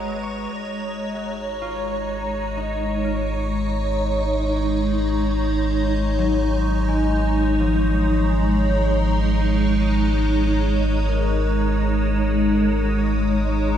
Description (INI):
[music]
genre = ambient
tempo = free time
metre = none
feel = none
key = unclear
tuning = A4 = 440 Hz
[part]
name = evolving wavetable pad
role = sustained chords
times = 0.0-13.8 s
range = G#3 to A#5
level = -22 LUFS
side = right 1 dB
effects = ensemble chorus, built-in reverb, phaser
[part]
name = concert harp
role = arpeggios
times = 0.0-13.8 s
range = E#3 to C#6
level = -32 LUFS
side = left 3 dB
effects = analog delay
[part]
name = warm sub bass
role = bass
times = 0.0-13.8 s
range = G#1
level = -23 LUFS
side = equal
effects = none
[sound]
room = moderate echo chamber reverb, RT60 2.1 s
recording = echo-heavy mix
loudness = -19 LUFS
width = side -9 dB against mid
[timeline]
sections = 0.0-13.8 A section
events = fade-out on harp 0.0-13.8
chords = 0.0 G#7sus2; 0.5 F#6/G#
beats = free time